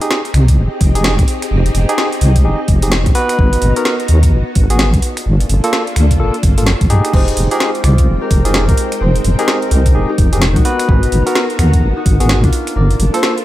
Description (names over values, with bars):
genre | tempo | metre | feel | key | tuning
UK garage, two-step garage | 128 BPM | 4/4 | swing 62% on 16ths | F dorian | A4 = 438 Hz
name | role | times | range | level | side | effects
soft string machine | sustained chords | 0.0-13.4 s | Ab3 to Bb5 | -23 LUFS | left 1 dB | ensemble chorus, vintage 12-bit sampler grit, sidechain pumping
barky tine electric piano | stabs | 0.0-13.3 s | Bb3 to Cb5 | -20 LUFS | equal | medium stereo tremolo, analog delay
garage drum kit | drums | 0.0-13.4 s | crash cymbal, finger snaps, hi-hat, snare drum | -20 LUFS | equal | overdrive
deep soft wobble bass | bass | 0.3-13.1 s | F1 to G2 | -12 LUFS | equal | chorus, sidechain pumping
electronic kick drum | drums | 0.5-12.5 s | none | -13 LUFS | equal | overdrive
concert harp | melody | 7.1-13.4 s | D4 to Eb5 | -20 LUFS | left 1 dB | analog delay
room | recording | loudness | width
digital ambience | none | -11 LUFS | side -15 dB against mid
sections
0.0-13.4 A section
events
none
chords
0.0 Fm7; 3.2 Abm7; 5.0 Gm7; 7.1 Fm7; 10.7 Abm7; 12.5 Gm7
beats
0.10 0.57 1.04 | 1.51 1.98 2.45 2.92 | 3.39 3.85 4.32 4.79 | 5.26 5.73 6.20 6.67 | 7.14 7.61 8.07 8.54 | 9.01 9.48 9.95 10.42 | 10.89 11.36 11.82 12.29 | 12.76 13.23